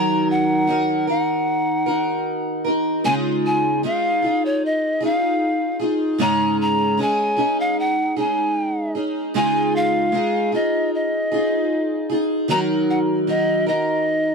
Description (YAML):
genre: acoustic pop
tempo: 76 BPM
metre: 4/4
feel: straight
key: Db major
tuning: A4 = 442 Hz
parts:
  - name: polished pan flute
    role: melody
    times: 0.0-14.3 s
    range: Db5 to Bb5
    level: -21 LUFS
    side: equal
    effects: none
  - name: picked steel-string acoustic guitar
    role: accompaniment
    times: 0.0-14.3 s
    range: Ab2 to Bb4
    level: -20 LUFS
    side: equal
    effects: double-tracked left and right
room: little or no reverb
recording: dry, close 1970s-style studio recording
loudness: -18 LUFS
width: side -5 dB against mid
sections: 0.0-14.3 A section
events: none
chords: 0.0 Ebm; 3.0 Dbadd9; 6.2 Absus4; 9.3 Dbadd9; 12.5 Ebm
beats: 0.68 1.47 2.25 | 3.04 3.83 4.62 5.40 | 6.19 6.98 7.77 8.55 | 9.34 10.13 10.92 11.71 | 12.49 13.28 14.07